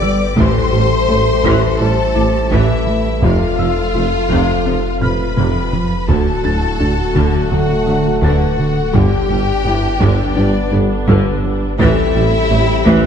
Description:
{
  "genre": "cinematic, hybrid orchestral and electronic film score",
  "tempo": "84 BPM",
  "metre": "4/4",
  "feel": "straight",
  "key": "A minor",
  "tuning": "A4 = 440 Hz",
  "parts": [
    { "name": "clear symphonic violin section", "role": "melody", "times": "0.0-13.1 s", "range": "D5 to D6", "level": "-24 LUFS", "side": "left 4 dB", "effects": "none" },
    { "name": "rich studio violin section", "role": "second line", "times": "0.0-13.1 s", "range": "D4 to D5", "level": "-23 LUFS", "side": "left 4 dB", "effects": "none" },
    { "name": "clear symphonic viola section", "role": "accompaniment", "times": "0.0-13.1 s", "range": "C3 to G4", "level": "-22 LUFS", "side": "equal", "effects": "none" },
    { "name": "mellow French horn section", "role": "sustained chords", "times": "0.0-13.1 s", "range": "D4 to C5", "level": "-22 LUFS", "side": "left 6 dB", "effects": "none" },
    { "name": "mellow trombone section", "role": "sustained chords", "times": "0.0-13.1 s", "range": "F3 to C4", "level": "-25 LUFS", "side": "right 3 dB", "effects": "none" },
    { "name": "smooth gliding synth bass", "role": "riff", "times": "0.0-13.1 s", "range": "D2 to A3", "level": "-20 LUFS", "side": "right 2 dB", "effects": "none" },
    { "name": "saturated sub bass", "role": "bass", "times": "0.0-13.1 s", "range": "D1 to A1", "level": "-22 LUFS", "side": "equal", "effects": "none" },
    { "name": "felt-muted upright piano", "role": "texture", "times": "0.0-13.1 s", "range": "D6 to A6", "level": "-33 LUFS", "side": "left 2 dB", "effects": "ping-pong delay" },
    { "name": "thumb-piano-like synth pluck", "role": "arpeggios", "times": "0.4-13.1 s", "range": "D3 to G4", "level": "-24 LUFS", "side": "left 3 dB", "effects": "chorus" },
    { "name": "clear symphonic cello section", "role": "bass", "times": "0.4-12.9 s", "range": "D2 to A2", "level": "-22 LUFS", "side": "right 3 dB", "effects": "none" },
    { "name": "rich symphonic double bass section", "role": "bass", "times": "0.4-12.9 s", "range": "F1 to D2", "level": "-22 LUFS", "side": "right 4 dB", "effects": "none" },
    { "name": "warm tuba", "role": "bass", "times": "0.4-13.0 s", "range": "F1 to D2", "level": "-24 LUFS", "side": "right 4 dB", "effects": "none" },
    { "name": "taiko ensemble", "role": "drums", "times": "0.4-13.1 s", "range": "none", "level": "-22 LUFS", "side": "left 1 dB", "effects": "none" }
  ],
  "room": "moderate scoring stage reverb, RT60 1.6 s",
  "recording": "dark, warm production, nothing above 10.7 kHz",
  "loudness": "-12 LUFS",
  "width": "side -7 dB against mid",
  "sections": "0.0-13.1 A section",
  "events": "drum fill 5.0-6.1",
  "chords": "0.4 Am7; 3.2 F; 6.1 D; 8.9 G; 11.8 Am7",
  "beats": "| 0.37 1.08 1.80 2.51 | 3.23 3.94 4.66 5.37 | 6.08 6.80 7.51 8.23 | 8.94 9.65 10.37 11.08 | 11.80 12.51"
}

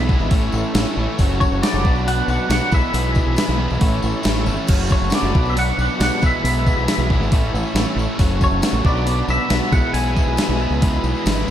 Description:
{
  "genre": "indie rock",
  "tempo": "137 BPM",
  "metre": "4/4",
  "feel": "straight",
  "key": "A major",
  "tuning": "A4 = 440 Hz",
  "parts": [
    { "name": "twangy electric guitar", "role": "melody", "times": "0.0-11.2 s", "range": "C#5 to G#5", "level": "-24 LUFS", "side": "equal", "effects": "analog chorus, slapback echo" },
    { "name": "glockenspiel with brass mallets", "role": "second line", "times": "0.0-11.2 s", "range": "A5 to E6", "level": "-33 LUFS", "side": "left 6 dB", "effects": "slapback echo" },
    { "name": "combo organ", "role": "sustained chords", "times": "0.0-11.5 s", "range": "F#4 to C#6", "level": "-33 LUFS", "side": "left 2 dB", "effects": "none" },
    { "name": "overdriven electric guitar", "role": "riff", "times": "0.0-11.5 s", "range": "F#2 to F#4", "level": "-26 LUFS", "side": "left 7 dB", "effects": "slapback echo" },
    { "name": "thick fuzz guitar", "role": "riff", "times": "0.0-11.5 s", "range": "F#2 to F#4", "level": "-25 LUFS", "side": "right 8 dB", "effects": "distortion, analog chorus, slapback echo, tape echo" },
    { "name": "growling fingered electric bass", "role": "bass", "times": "0.0-11.5 s", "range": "F#1 to C#2", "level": "-21 LUFS", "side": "equal", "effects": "overdrive" },
    { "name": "gated 80s digital drum machine", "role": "drums", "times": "0.1-11.4 s", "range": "crash cymbal, hi-hat, kick drum, snare drum", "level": "-19 LUFS", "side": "equal", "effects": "gated reverb, gated reverb snare" },
    { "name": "tambourine", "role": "percussion", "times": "0.1-11.5 s", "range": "none", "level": "-38 LUFS", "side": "left 8 dB", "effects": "none" }
  ],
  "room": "light reverb",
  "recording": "none",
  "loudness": "-16 LUFS",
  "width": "side -10 dB against mid",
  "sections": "0.0-11.5 A section",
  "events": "none",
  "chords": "0.3 A; 1.2 F#m; 1.8 Bm; 2.7 E/B; 3.8 A; 4.7 F#m; 5.3 Bm; 6.2 E/B; 7.3 A; 8.2 F#m; 8.8 Bm; 9.7 E/B",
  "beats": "0.31 0.75 | 1.19 1.63 2.06 2.50 | 2.94 3.38 3.81 4.25 | 4.69 5.13 5.57 6.00 | 6.44 6.88 7.32 7.75 | 8.19 8.63 9.07 9.50 | 9.94 10.38 10.82 11.26"
}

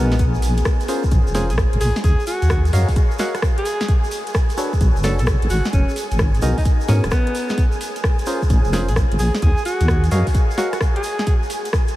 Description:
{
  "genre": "UK garage, two-step garage",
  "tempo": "130 BPM",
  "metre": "4/4",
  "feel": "swing 67% on 16ths",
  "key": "unclear",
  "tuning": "A4 = 441 Hz",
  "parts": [
    { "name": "clear alto saxophone", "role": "melody", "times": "0.0-11.3 s", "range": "Cb4 to A4", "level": "-27 LUFS", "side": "equal", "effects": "ping-pong delay" },
    { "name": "warm analog pad", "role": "sustained chords", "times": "0.0-12.0 s", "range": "Ab4 to Ab5", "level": "-30 LUFS", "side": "right 1 dB", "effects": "chorus, sidechain pumping" },
    { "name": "percussive organ stab", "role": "stabs", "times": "0.0-10.7 s", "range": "Cb4 to F5", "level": "-27 LUFS", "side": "equal", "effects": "chorus, ping-pong delay" },
    { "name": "deep soft wobble bass", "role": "bass", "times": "0.0-10.2 s", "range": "Eb1 to Ab2", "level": "-18 LUFS", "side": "equal", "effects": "chorus, tube saturation" },
    { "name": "garage drum kit", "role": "drums", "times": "0.1-11.9 s", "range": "hi-hat, rim click, snare drum", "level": "-27 LUFS", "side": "equal", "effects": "none" },
    { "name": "egg shaker", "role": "percussion", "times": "0.1-11.9 s", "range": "none", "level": "-36 LUFS", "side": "right 4 dB", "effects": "none" },
    { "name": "electronic kick drum", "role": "drums", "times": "0.2-11.9 s", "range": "none", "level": "-17 LUFS", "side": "equal", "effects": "none" }
  ],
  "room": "light reverb",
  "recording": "vinyl crackle",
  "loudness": "-16 LUFS",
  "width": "side -16 dB against mid",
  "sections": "0.0-12.0 A section",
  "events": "none",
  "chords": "0.2 Bbm9; 2.0 Ebm9; 3.9 Bm9; 5.5 Abm9; 7.6 Bbm9; 9.4 Ebm9; 11.3 N.C.",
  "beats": "| 0.19 0.65 1.11 1.58 | 2.04 2.50 2.96 3.42 | 3.88 4.35 4.81 5.27 | 5.73 6.19 6.65 7.12 | 7.58 8.04 8.50 8.96 | 9.42 9.88 10.35 10.81 | 11.27 11.73"
}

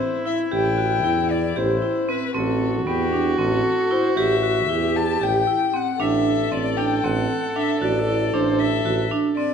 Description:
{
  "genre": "contemporary instrumental, chamber music in an uneven meter",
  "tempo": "230 BPM (eighths)",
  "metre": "7/8",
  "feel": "straight",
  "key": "A dorian",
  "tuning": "A4 = 442 Hz",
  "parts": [
    { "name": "rich violin", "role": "melody", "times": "0.0-9.5 s", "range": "G4 to A5", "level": "-24 LUFS", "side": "left 9 dB", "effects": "none" },
    { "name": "dark viola", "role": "second line", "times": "0.0-9.5 s", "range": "E4 to A4", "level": "-26 LUFS", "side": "right 1 dB", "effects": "none" },
    { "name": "vibraphone with hard mallets", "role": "arpeggios", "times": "0.0-9.5 s", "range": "B3 to G4", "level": "-24 LUFS", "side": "right 3 dB", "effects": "none" },
    { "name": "warm tuba", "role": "bass", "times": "0.5-9.1 s", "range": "A1 to E2", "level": "-26 LUFS", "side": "right 3 dB", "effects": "none" }
  ],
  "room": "moderate concert hall reverb, RT60 2.4 s",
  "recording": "dark, warm production",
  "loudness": "-19 LUFS",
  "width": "side -7 dB against mid",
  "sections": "0.0-9.5 A section",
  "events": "none",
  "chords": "0.0 Am7; 6.0 D5/A",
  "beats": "0.00 0.26 | 0.52 0.78 1.04 1.30 1.56 1.82 2.08 | 2.34 2.60 2.86 3.12 3.38 3.65 3.91 | 4.17 4.43 4.69 4.95 5.21 5.47 5.73 | 5.99 6.25 6.51 6.77 7.03 7.29 7.55 | 7.81 8.07 8.33 8.59 8.85 9.11 9.37"
}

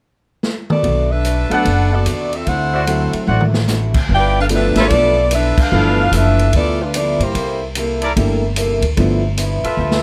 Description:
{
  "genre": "jazz, big band swing",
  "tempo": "148 BPM",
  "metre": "4/4",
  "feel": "swing 64% on 8ths",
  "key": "G mixolydian",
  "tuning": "A4 = 440 Hz",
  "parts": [
    { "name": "swinging big-band drum kit", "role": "drums", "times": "0.4-10.0 s", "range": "crash cymbal, hi-hat, kick drum, ride cymbal, snare drum, toms", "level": "-24 LUFS", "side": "equal", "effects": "none" },
    { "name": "clear saxophone section", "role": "melody", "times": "0.7-7.6 s", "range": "A3 to G5", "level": "-20 LUFS", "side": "equal", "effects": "none" },
    { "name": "picked steel-string acoustic guitar", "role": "accompaniment", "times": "0.8-10.0 s", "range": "G2 to A4", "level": "-28 LUFS", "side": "equal", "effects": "none" },
    { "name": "upright bass", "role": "bass", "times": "0.8-10.0 s", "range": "F#1 to G2", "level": "-20 LUFS", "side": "equal", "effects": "none" },
    { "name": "warm grand piano", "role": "accompaniment", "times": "1.5-9.2 s", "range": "E3 to E5", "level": "-23 LUFS", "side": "equal", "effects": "none" },
    { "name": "clear trumpet section", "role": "stabs", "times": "1.5-10.0 s", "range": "E4 to F#5", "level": "-24 LUFS", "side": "equal", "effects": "none" }
  ],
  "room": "light reverb",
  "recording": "none",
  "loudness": "-16 LUFS",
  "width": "mono",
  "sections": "0.8-4.1 A section; 4.1-10.0 B section",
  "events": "drum fill 0.4-0.8, 3.3-3.7, 9.8; band accent 5.5",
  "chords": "0.0 N.C.; 0.8 Bm7; 2.5 D9; 4.1 G13; 7.3 C13; 9.0 G13",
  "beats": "0.02 0.43 | 0.84 1.24 1.65 2.06 | 2.47 2.87 3.28 3.69 | 4.09 4.50 4.91 5.31 | 5.72 6.13 6.53 6.94 | 7.34 7.75 8.16 8.56 | 8.97 9.37 9.78"
}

